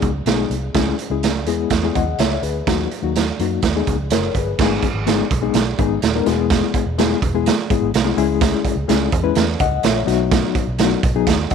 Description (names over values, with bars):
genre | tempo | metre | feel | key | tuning
uptempo 1960s-style soul | 125 BPM | 4/4 | straight | unclear | A4 = 440 Hz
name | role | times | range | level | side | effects
reed electric piano | accompaniment | 0.0-11.5 s | F#3 to F#5 | -20 LUFS | left 12 dB | fast tremolo
vintage muted fingered electric bass | bass | 0.0-11.5 s | D#1 to F#2 | -24 LUFS | equal | none
raw garage drum kit | drums | 0.0-11.5 s | crash cymbal, hi-hat, kick drum, snare drum | -19 LUFS | right 6 dB | none
room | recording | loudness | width
light reverb, small room ambience | 1960s-style stereo with parts hard left and right | -16 LUFS | side -6 dB against mid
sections
0.0-4.6 A section; 4.6-11.5 B section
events
none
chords
0.0 G#m; 0.7 C#m; 1.5 E; 2.7 D#m; 3.6 G#m; 6.3 E; 8.2 C#m; 10.1 B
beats
0.26 | 0.74 1.23 1.71 2.19 | 2.67 3.15 3.63 4.11 | 4.59 5.07 5.54 6.02 | 6.50 6.98 7.46 7.93 | 8.41 8.89 9.37 9.84 | 10.32 10.79 11.27